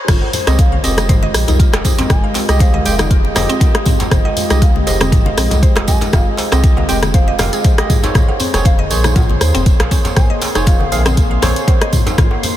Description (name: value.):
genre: afro house.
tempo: 119 BPM.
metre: 4/4.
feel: swing 54% on 16ths.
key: F minor.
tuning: A4 = 442 Hz.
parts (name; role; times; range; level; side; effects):
dark analog pad; sustained chords; 0.5-12.6 s; Ab3 to C6; -24 LUFS; left 1 dB; chorus, sidechain pumping.
mallet-like synth pluck; arpeggios; 0.1-12.6 s; C4 to F5; -23 LUFS; equal; chorus, sidechain pumping, diffuse ambient delay.
warm sub bass; bass; 0.1-12.3 s; F1 to Eb2; -18 LUFS; equal; tube saturation, sidechain pumping, high-pass filter.
deep house drum kit; drums; 0.1-12.5 s; crash cymbal, hi-hat, rim click, toms; -20 LUFS; left 1 dB; high-pass filter on snare, high-pass filter on toms, high-pass filter on hats, high-pass filter on cymbals, high-pass filter on room.
electronic kick drum; drums; 0.1-12.3 s; none; -12 LUFS; equal; high-pass filter on kick, high-pass filter on room.
congas; percussion; 0.1-12.5 s; none; -26 LUFS; left 3 dB; none.
tambourine; percussion; 0.1-12.5 s; none; -27 LUFS; right 5 dB; none.
djembe; percussion; 0.2-12.4 s; none; -26 LUFS; right 2 dB; none.
barky tine electric piano; stabs; 0.5-12.5 s; Ab3 to G5; -23 LUFS; right 3 dB; sidechain pumping, diffuse ambient delay.
mellow bass bansuri; melody; 0.6-11.2 s; F5 to Ab5; -28 LUFS; right 1 dB; diffuse ambient delay.
room: light reverb, digital ambience.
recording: high-pass filter.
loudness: -11 LUFS.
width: side -13 dB against mid.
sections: 0.1-12.6 A section.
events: drop 0.1-12.6.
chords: 0.1 Fm9.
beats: | 0.08 0.59 1.09 1.60 | 2.10 2.60 3.11 3.61 | 4.12 4.62 5.12 5.63 | 6.13 6.64 7.14 7.65 | 8.15 8.65 9.16 9.66 | 10.17 10.67 11.18 11.68 | 12.18.